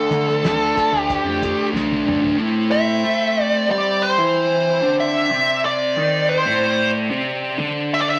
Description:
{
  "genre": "psychedelic rock",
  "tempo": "92 BPM",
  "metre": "4/4",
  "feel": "straight",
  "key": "A minor",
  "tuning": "A4 = 440 Hz",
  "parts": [
    { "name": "fuzz lead guitar", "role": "melody", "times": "0.0-8.2 s", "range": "A4 to E5", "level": "-20 LUFS", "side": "equal", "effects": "wah, distortion" },
    { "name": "hand-pumped harmonium", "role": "sustained chords", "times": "0.0-8.2 s", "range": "C4 to D5", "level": "-33 LUFS", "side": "equal", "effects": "none" },
    { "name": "thick fuzz guitar", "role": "riff", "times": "0.0-8.2 s", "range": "A2 to A4", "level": "-24 LUFS", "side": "equal", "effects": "distortion, phaser" },
    { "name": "growling picked electric bass", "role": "bass", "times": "0.1-2.4 s", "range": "A1 to D3", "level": "-31 LUFS", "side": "equal", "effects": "overdrive" },
    { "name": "cloth-damped thuddy drum kit", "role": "drums", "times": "0.1-2.4 s", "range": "hi-hat, kick drum, snare drum, toms", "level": "-29 LUFS", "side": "equal", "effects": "none" }
  ],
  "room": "wet studio reverb, RT60 0.6 s",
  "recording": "vinyl crackle",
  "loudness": "-19 LUFS",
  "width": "mono",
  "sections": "0.0-2.4 A section; 2.4-8.2 B section",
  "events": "drum fill 1.7-2.4",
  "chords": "0.0 Dm; 2.4 Am; 7.6 D5"
}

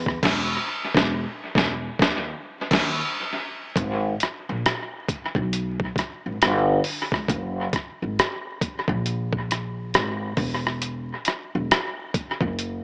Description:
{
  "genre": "R&B, neo-soul",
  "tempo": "68 BPM",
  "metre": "4/4",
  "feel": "swing 63% on 16ths",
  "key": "G# minor",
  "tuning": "A4 = 442 Hz",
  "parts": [
    { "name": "upright bass", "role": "bass", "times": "0.0-12.8 s", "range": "E1 to E2", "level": "-26 LUFS", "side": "equal", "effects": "none" },
    { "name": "boom bap sampler-style drum kit", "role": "drums", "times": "0.1-12.8 s", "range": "crash cymbal, hi-hat, kick drum, rim click, snare drum", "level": "-23 LUFS", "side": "equal", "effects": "dub echo" }
  ],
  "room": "moderate spring reverb, RT60 2.4 s",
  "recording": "echo-heavy mix, vinyl crackle, AM radio sound",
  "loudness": "-22 LUFS",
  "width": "side -37 dB against mid",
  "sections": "0.0-3.8 A section; 3.8-12.8 B section",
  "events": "band accent 0.2-3.8",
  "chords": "none"
}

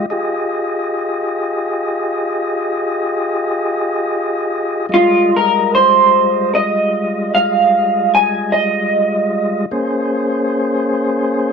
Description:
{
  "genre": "blues",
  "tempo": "50 BPM (dotted quarters)",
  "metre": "12/8",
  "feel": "straight",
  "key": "F minor",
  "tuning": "A4 = 441 Hz",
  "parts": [
    { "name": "electric guitar through a small old amp", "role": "melody", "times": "0.0-10.1 s", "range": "F4 to Ab5", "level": "-12 LUFS", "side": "right 2 dB", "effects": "lush chorus, slapback echo" },
    { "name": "tonewheel organ", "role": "sustained chords", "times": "0.0-11.5 s", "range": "G3 to Eb5", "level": "-18 LUFS", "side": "left 1 dB", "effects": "slow rotary speaker" }
  ],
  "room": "moderate club reverb, RT60 0.9 s",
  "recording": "none",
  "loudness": "-14 LUFS",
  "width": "side -6 dB against mid",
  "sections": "0.0-4.9 A section; 4.9-11.5 B section",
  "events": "clean electric guitar solo 4.9-11.5",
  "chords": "0.0 Fm9; 9.7 Bbm9"
}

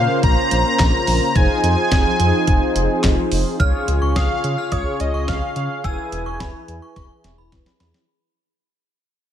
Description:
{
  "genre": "synth-pop",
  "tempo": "107 BPM",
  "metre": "4/4",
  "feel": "straight",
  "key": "Db major",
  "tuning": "A4 = 442 Hz",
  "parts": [
    { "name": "wide unison lead", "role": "melody", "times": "0.0-7.5 s", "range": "Db5 to Bb5", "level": "-22 LUFS", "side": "equal", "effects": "low-pass filter, ping-pong delay" },
    { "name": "mellow synth brass", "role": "accompaniment", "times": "0.0-8.0 s", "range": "Db4 to Db5", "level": "-24 LUFS", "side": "equal", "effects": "chorus, low-pass filter" },
    { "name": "warm analog pad", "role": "sustained chords", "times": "0.0-8.1 s", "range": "Db3 to C5", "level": "-25 LUFS", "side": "left 1 dB", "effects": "chorus, low-pass filter" },
    { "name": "smooth synth bass", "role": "bass", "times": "0.0-7.9 s", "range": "E1 to Db3", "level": "-21 LUFS", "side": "equal", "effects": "none" },
    { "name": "clean 12-bit digital drum machine", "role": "drums", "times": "0.2-8.1 s", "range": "handclaps, hi-hat, kick drum, snare drum", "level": "-20 LUFS", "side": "equal", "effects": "none" },
    { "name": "synth chime", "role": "second line", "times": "3.6-7.9 s", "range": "B5 to F6", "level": "-29 LUFS", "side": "right 2 dB", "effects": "ensemble chorus, ping-pong delay" }
  ],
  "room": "moderate plate reverb, RT60 2.0 s, digital ambience",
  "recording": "dreamy mix soaked in reverb",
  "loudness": "-16 LUFS",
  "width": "side -10 dB against mid",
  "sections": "0.0-3.6 A section; 3.6-8.1 B section",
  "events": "fade-out 3.6-8.1; filter sweep 3.6-8.1; drum fill 7.0-8.1",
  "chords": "0.0 Bbmadd9; 1.4 Fm7; 3.6 Db; 5.8 E"
}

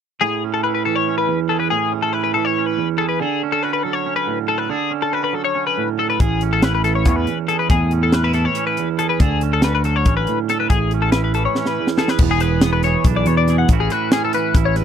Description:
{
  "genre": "math rock and midwest emo",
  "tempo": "280 BPM (eighths)",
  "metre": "7/8",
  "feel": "straight",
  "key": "A major",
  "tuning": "A4 = 438 Hz",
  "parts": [
    { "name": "twangy electric guitar", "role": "accompaniment", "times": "0.2-14.8 s", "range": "E2 to A4", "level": "-21 LUFS", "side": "right 12 dB", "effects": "none" },
    { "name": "twelve-string electric guitar", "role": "arpeggios", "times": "0.2-14.8 s", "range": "G#4 to F#5", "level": "-20 LUFS", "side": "left 9 dB", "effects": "analog chorus" },
    { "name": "growling fingered electric bass", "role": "bass", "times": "6.2-14.8 s", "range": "E1 to E2", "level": "-19 LUFS", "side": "left 1 dB", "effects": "overdrive" },
    { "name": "crisp fusion drum kit", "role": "drums", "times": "6.2-14.8 s", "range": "crash cymbal, hi-hat, kick drum, snare drum", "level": "-18 LUFS", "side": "equal", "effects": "none" }
  ],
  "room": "little or no reverb",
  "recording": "dry, close 1970s-style studio recording",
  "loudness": "-16 LUFS",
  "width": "side -8 dB against mid",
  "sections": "0.2-12.2 A section; 12.2-14.8 B section",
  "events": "drum fill 11.6-12.2",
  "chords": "0.2 Amaj7; 3.2 Dmaj7; 6.2 Amaj7; 9.2 Dmaj7; 10.7 Amaj9; 12.2 E7; 13.7 Amaj13"
}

